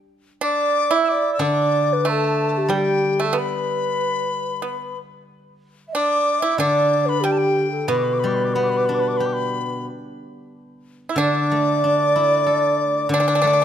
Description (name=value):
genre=chinese traditional, Chinese chamber ensemble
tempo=92 BPM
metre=4/4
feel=straight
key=unclear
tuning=A4 = 439 Hz
part: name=mellow hollow xiao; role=melody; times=0.4-13.6 s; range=G4 to E5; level=-21 LUFS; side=right 1 dB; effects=none
part: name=bright reedy dizi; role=second line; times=0.4-13.6 s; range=G5 to E6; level=-24 LUFS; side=left 6 dB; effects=none
part: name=pipa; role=second line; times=0.4-13.6 s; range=G3 to E4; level=-24 LUFS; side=right 6 dB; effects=none
part: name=steel-string zither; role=accompaniment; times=1.4-13.6 s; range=B2 to A4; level=-24 LUFS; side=equal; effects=none
room=light reverb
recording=close, detailed microphones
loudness=-18 LUFS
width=side -9 dB against mid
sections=0.1-13.6 A section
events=none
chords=none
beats=| 0.10 0.76 1.41 2.06 | 2.71 3.36 4.00 4.65 | 5.30 5.94 6.59 7.24 | 7.89 8.55 9.21 9.86 | 10.52 11.18 11.83 12.47 | 13.12